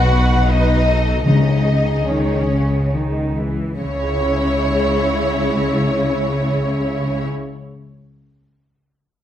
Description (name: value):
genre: cinematic, emotional film score for orchestra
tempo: 66-86 BPM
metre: 3/4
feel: rubato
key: C# minor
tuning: A4 = 440 Hz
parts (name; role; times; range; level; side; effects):
- warm studio violin section; melody; 0.0-7.3 s; C#5 to F#5; -24 LUFS; left 1 dB; none
- warm studio violin section; second line; 0.0-7.2 s; C#4 to C#5; -25 LUFS; equal; none
- warm studio viola section; accompaniment; 0.0-7.3 s; G#3 to B4; -26 LUFS; equal; none
- warm studio cello section; bass; 0.0-7.3 s; B2 to E3; -22 LUFS; equal; none
- warm studio double bass section; bass; 0.0-7.2 s; B1 to C#2; -20 LUFS; left 1 dB; none
- timpani; percussion; 1.3-7.3 s; C#3; -20 LUFS; left 1 dB; none
room: wet stone room reverb, RT60 1.1 s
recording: lossy compression artefacts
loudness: -15 LUFS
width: side -10 dB against mid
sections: 0.0-3.8 A section; 3.8-9.1 B section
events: slowing down 0.0-3.8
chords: 0.0 B5; 1.3 C#sus2; 3.8 C#m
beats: 0.49 | 1.26 2.07 2.92 | 3.81 4.68 5.55 | 6.41